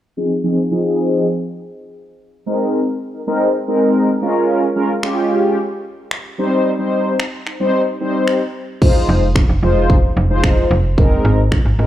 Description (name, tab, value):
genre	dance-pop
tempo	111 BPM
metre	4/4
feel	straight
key	F minor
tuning	A4 = 440 Hz
part	mellow synth brass	accompaniment	0.2-11.9 s	F3 to C5	-16 LUFS	equal	chorus, sidechain pumping, low-pass filter, slapback echo
part	pop drum kit	drums	5.0-11.6 s	crash cymbal, finger snaps, kick drum	-16 LUFS	equal	none
part	slap-like FM bass	bass	9.1-11.9 s	F1 to Ab1	-15 LUFS	equal	sidechain pumping
room	light reverb, digital ambience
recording	live gig heard through the venue's PA, club reverb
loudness	-14 LUFS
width	side -12 dB against mid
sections	0.2-8.8 A section; 8.8-11.9 B section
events	filter sweep on analog polysynth 0.2-8.8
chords	0.2 Fm7; 2.3 Abadd9; 4.2 Bbm7; 6.4 Cm; 8.8 Fm7; 11.0 Abadd9